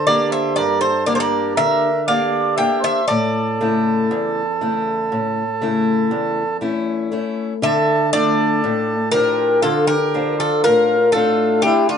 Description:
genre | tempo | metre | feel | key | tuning
greek folk, Greek bouzouki band | 119 BPM (eighths) | 9/8 | straight | D minor from 7.6 s | A4 = 445 Hz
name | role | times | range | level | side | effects
Greek bouzouki | melody | 0.0-12.0 s | F4 to G5 | -18 LUFS | left 1 dB | none
mellow accordion | second line | 0.0-12.0 s | D4 to E5 | -21 LUFS | right 2 dB | none
picked old ladder-braced acoustic guitar | accompaniment | 0.0-12.0 s | E2 to G4 | -20 LUFS | left 1 dB | none
room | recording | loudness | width
wet small room reverb, RT60 0.5 s | band playing live in one room, nothing above 10.8 kHz | -16 LUFS | side -7 dB against mid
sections
0.0-7.6 A section; 7.6-12.0 B section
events
none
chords
0.0 Gm; 3.1 A; 7.6 Dm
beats
0.08 0.58 1.09 1.59 2.09 2.60 | 3.10 3.60 4.11 4.61 5.11 5.62 6.12 6.62 7.12 | 7.63 8.13 8.63 9.14 9.64 10.14 10.65 11.15 11.65

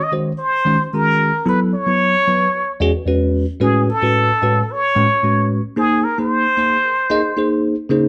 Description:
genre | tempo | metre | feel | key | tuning
jazz | 112 BPM | 4/4 | swing 53% on 16ths | unclear | A4 = 440 Hz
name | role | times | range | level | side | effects
trumpet with plunger mute | melody | 0.0-7.6 s | G#4 to D#5 | -19 LUFS | equal | slapback echo
bell-like tine electric piano | accompaniment | 0.1-8.1 s | E2 to D#5 | -20 LUFS | equal | phaser
room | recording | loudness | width
moderate large studio reverb, RT60 0.9 s, small room ambience | dark, warm production, faint mains hum | -17 LUFS | mono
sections
0.0-7.9 A section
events
none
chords
0.0 D#m7; 1.5 Bsus2; 2.5 E; 3.6 Amaj9; 5.8 G#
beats
0.40 0.93 | 1.47 2.01 2.54 3.08 | 3.62 4.15 4.69 5.23 | 5.76 6.30 6.84 7.38 | 7.92

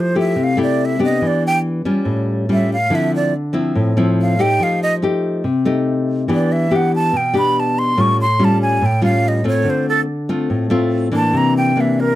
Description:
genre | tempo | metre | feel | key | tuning
bossa nova | 142 BPM | 4/4 | straight | unclear | A4 = 441 Hz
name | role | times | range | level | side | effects
breathy jazz flute | melody | 0.0-12.2 s | A4 to C#6 | -18 LUFS | right 2 dB | none
nylon-string guitar | accompaniment | 0.0-12.2 s | A2 to G4 | -16 LUFS | left 1 dB | none
room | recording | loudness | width
light reverb | dry, close 1970s-style studio recording | -14 LUFS | side -14 dB against mid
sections
0.0-12.2 A section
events
flute solo 0.0-12.2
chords
0.0 Fmaj9; 1.2 Em7; 2.1 A7b13; 2.9 Dm9; 4.6 F9; 6.3 Em7; 8.0 A7alt; 9.7 Dm7; 11.3 C9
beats
0.37 0.79 | 1.21 1.64 2.06 2.48 | 2.90 3.32 3.75 4.17 | 4.59 5.01 5.43 5.86 | 6.28 6.70 7.12 7.54 | 7.97 8.39 8.81 9.23 | 9.65 10.08 10.50 10.92 | 11.34 11.77

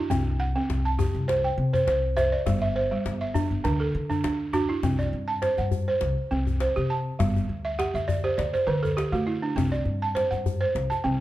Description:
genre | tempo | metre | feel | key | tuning
west african traditional, West African string and xylophone music | 101 BPM | 4/4 | swing 54% on 16ths | C lydian | A4 = 442 Hz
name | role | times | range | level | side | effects
balafon | arpeggios | 0.0-11.2 s | D3 to A5 | -25 LUFS | right 2 dB | none
upright bass | bass | 0.1-11.2 s | G1 to D3 | -29 LUFS | equal | none
djembe | percussion | 0.1-11.0 s | none | -30 LUFS | left 4 dB | none
room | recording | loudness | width
light reverb | dark, warm production | -23 LUFS | side -15 dB against mid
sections
0.0-4.8 A section; 4.8-11.2 B section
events
balafon fill 7.6-9.6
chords
0.1 C; 2.5 G5; 3.6 D; 4.8 C5; 7.2 G5; 8.4 D5; 9.6 C5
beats
| 0.10 0.69 1.28 1.87 | 2.46 3.05 3.64 4.23 | 4.82 5.42 6.01 6.60 | 7.19 7.78 8.37 8.97 | 9.56 10.15 10.74

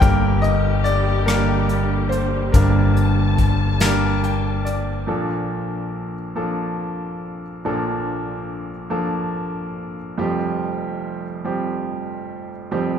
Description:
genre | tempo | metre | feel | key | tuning
acoustic folk-pop ballad | 47 BPM (dotted quarters) | 6/8 | straight | Bb major | A4 = 439 Hz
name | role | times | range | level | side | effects
clear grand piano | melody | 0.0-13.0 s | F1 to G5 | -22 LUFS | right 1 dB | none
muted studio string section | sustained chords | 0.0-5.1 s | D3 to A5 | -27 LUFS | left 1 dB | none
fingered electric bass | bass | 0.0-5.0 s | G1 | -20 LUFS | left 2 dB | none
soft brush drum kit | drums | 0.0-4.9 s | hi-hat, kick drum, rim click, snare drum | -21 LUFS | left 2 dB | none
room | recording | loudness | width
moderate scoring stage reverb, RT60 2.0 s | recorded in a church or concert hall | -19 LUFS | side -8 dB against mid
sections
0.0-5.1 A section; 5.1-13.0 B section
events
grand piano fill 3.8-5.1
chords
0.0 Gm; 5.1 Bbmaj7; 10.2 Fsus2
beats
| 0.02 1.28 | 2.54 3.81 | 5.09 6.37 | 7.64 8.92 | 10.18 11.45 | 12.71

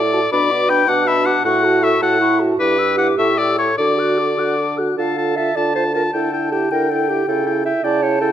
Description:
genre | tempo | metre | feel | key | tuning
quick classical-period movement for wind quintet | 98-109 BPM (dotted quarters) | 6/8 | rubato | D major, D minor from 5.0 s | A4 = 440 Hz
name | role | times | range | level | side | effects
bright oboe | second line | 0.0-8.3 s | B4 to A5 | -19 LUFS | left 4 dB | none
warm clarinet | accompaniment | 0.0-8.3 s | D4 to E5 | -22 LUFS | right 6 dB | none
dark bassoon | bass | 0.0-8.3 s | G2 to D3 | -21 LUFS | right 2 dB | none
silver concert flute | melody | 0.1-8.3 s | F5 to F#6 | -24 LUFS | left 7 dB | none
mellow French horn | accompaniment | 0.1-8.3 s | D4 to A4 | -23 LUFS | equal | none
room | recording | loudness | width
moderate recital hall reverb, RT60 1.4 s | close, detailed microphones | -15 LUFS | side -10 dB against mid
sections
0.0-5.0 A section; 5.0-8.3 B section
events
none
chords
0.3 Bm; 1.4 F#m/A; 2.6 Em7/G; 3.2 A7; 3.8 D; 5.0 Dm; 6.1 Dsus24; 7.3 A7/C#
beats
| 0.32 0.88 | 1.45 2.02 | 2.60 3.19 | 3.79 4.38 | 4.98 5.57 | 6.14 6.72 | 7.28 7.84

